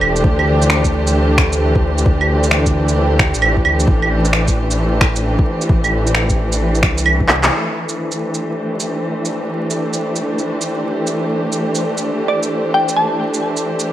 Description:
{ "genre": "future garage", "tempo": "132 BPM", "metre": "4/4", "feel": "swing 66% on 16ths", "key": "unclear", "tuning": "A4 = 440 Hz", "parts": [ { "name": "muted studio string section", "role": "sustained chords", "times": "0.0-13.9 s", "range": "E3 to C5", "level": "-18 LUFS", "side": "equal", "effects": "sidechain pumping, low-pass filter" }, { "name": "dark detuned saw bass", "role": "bass", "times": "0.0-7.5 s", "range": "E1 to D2", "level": "-18 LUFS", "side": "equal", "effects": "tube saturation, sidechain pumping" }, { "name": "electronic claves, shaker, finger snaps and handclaps", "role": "drums", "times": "0.0-13.9 s", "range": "none", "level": "-17 LUFS", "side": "right 2 dB", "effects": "none" }, { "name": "electronic kick drum", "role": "drums", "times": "0.2-7.3 s", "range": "none", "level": "-16 LUFS", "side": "equal", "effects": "none" }, { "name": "glassy wavetable pluck", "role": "melody", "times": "12.3-13.6 s", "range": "D5 to A5", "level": "-18 LUFS", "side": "equal", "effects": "chorus, digital delay" } ], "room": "moderate lush hall reverb, RT60 1.7 s", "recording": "vinyl crackle", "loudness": "-14 LUFS", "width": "side -12 dB against mid", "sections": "0.0-7.5 A section; 7.5-13.9 B section", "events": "drum fill 7.3; band accent 7.4", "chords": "0.2 Am7" }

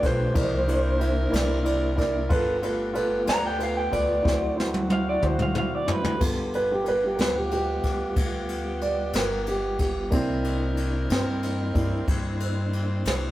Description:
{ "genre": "slow blues", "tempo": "61 BPM (dotted quarters)", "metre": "12/8", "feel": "straight", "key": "G mixolydian", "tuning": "A4 = 440 Hz", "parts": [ { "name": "electric guitar through a small old amp", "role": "second line", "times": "0.0-6.2 s", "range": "B4 to Bb5", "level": "-27 LUFS", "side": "equal", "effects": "none" }, { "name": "warm grand piano", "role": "accompaniment", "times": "0.0-13.0 s", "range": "Bb3 to E5", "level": "-27 LUFS", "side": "right 2 dB", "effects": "none" }, { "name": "mellow tonewheel organ", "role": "sustained chords", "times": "0.0-13.3 s", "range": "F3 to Eb5", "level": "-34 LUFS", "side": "left 2 dB", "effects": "slow rotary speaker, chorus vibrato" }, { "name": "warm saxophone section", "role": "sustained chords", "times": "0.0-13.3 s", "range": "B3 to C5", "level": "-36 LUFS", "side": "equal", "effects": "none" }, { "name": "upright bass", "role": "bass", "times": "0.0-13.3 s", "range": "G1 to G2", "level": "-29 LUFS", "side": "equal", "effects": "none" }, { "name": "jazz brush drum kit", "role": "drums", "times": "0.0-13.2 s", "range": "crash cymbal, kick drum, ride cymbal, snare drum, toms", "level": "-28 LUFS", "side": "equal", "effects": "none" } ], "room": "moderate stone room reverb, RT60 1.3 s", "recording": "rough rehearsal-room recording", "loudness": "-22 LUFS", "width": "side -15 dB against mid", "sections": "0.0-6.2 A section; 6.2-13.3 A section", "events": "clean electric guitar solo 0.0-6.2; drum fill 4.3-6.2; grand piano solo 6.2-13.3", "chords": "0.4 C7; 2.3 G7; 4.3 D7; 6.2 G7; 10.1 C7" }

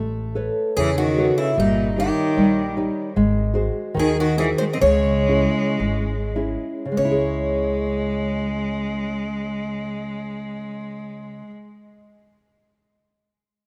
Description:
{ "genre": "fado-style ballad", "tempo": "47-76 BPM", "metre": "2/4", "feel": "rubato", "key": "C# minor", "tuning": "A4 = 440 Hz", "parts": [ { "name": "nylon-string guitar", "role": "accompaniment", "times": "0.0-11.7 s", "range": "C#3 to C#5", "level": "-26 LUFS", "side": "equal", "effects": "none" }, { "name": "upright bass", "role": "bass", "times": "0.0-11.5 s", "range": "G1 to E2", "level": "-29 LUFS", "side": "equal", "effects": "none" }, { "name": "picked twelve-string acoustic guitar", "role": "melody", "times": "0.8-11.5 s", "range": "D#4 to D#5", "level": "-26 LUFS", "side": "equal", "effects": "none" }, { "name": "clear cello", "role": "second line", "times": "0.8-11.5 s", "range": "A#2 to B#3", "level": "-27 LUFS", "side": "equal", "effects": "none" } ], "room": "light reverb, studio ambience", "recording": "rough home demo mix", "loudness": "-22 LUFS", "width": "mono", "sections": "0.0-7.0 A section; 7.0-11.9 B section", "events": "slowing down 3.2-7.0", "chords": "0.0 Aadd9; 1.6 D#7/G; 3.2 G#7; 4.8 C#m" }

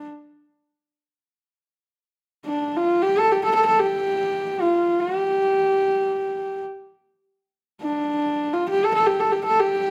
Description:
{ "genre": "mongolian traditional, Mongolian folk", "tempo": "free time", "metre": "none", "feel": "none", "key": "D yu mode", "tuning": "A4 = 439 Hz", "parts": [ { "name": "rich horsehead fiddle", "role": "solo", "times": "0.0-9.9 s", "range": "D4 to A4", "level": "-22 LUFS", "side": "equal", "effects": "none" } ], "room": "wet studio reverb, RT60 0.9 s", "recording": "band playing live in one room", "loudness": "-22 LUFS", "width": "mono", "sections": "0.0-1.9 A section; 1.9-9.9 A section", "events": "none", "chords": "none" }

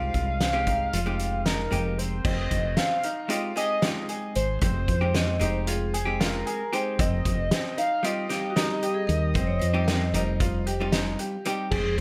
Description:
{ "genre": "progressive instrumental, band music in an uneven meter", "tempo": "228 BPM (eighths)", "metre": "9/8", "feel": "straight", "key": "F minor", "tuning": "A4 = 440 Hz", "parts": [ { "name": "pulse-width lead", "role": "melody", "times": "0.0-12.0 s", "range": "Ab4 to F5", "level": "-32 LUFS", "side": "equal", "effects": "chorus, delay" }, { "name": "vintage hollow-body jazz guitar", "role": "accompaniment", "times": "0.0-12.0 s", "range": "G3 to Bb4", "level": "-34 LUFS", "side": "equal", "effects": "none" }, { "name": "bright concert grand piano", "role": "arpeggios", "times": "0.0-12.0 s", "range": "C4 to Ab4", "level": "-36 LUFS", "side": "equal", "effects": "none" }, { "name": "woody fretless electric bass", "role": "bass", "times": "0.0-12.0 s", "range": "F1 to F2", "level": "-30 LUFS", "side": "equal", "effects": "none" }, { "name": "loose indie drum kit", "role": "drums", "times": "0.1-12.0 s", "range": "crash cymbal, hi-hat, kick drum, snare drum", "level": "-31 LUFS", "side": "equal", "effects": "none" }, { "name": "vibraphone with medium hard mallets", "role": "second line", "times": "5.1-11.0 s", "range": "Gb4 to Eb5", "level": "-36 LUFS", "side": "equal", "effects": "none" } ], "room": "light reverb", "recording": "none", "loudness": "-26 LUFS", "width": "mono", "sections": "0.0-2.2 A section; 2.2-11.7 B section", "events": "none", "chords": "0.0 Fm7; 7.0 Cm/F" }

